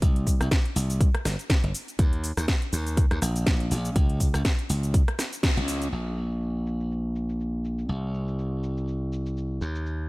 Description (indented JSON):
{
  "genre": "nu-disco, nu disco",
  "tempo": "122 BPM",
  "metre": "4/4",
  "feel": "swing 56% on 16ths",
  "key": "unclear",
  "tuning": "A4 = 441 Hz",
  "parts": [
    { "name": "glassy slap bass", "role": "bass", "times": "0.0-10.1 s", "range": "G1 to Eb2", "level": "-27 LUFS", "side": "equal", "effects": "none" },
    { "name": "electronic kick drum", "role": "drums", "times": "0.0-5.5 s", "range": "none", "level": "-22 LUFS", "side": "equal", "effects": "none" },
    { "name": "house drum kit", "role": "drums", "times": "0.0-10.0 s", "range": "cabasa, hi-hat, rim click, snare drum", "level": "-30 LUFS", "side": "equal", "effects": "low-pass filter on perc, low-pass filter on hats, low-pass filter on snare, low-pass filter on room" }
  ],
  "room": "little or no reverb",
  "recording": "none",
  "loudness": "-24 LUFS",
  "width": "side -22 dB against mid",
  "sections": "0.0-5.9 A section; 5.9-10.1 B section",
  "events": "band accent 5.4; filter sweep on drum 5.9-10.1",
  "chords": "none"
}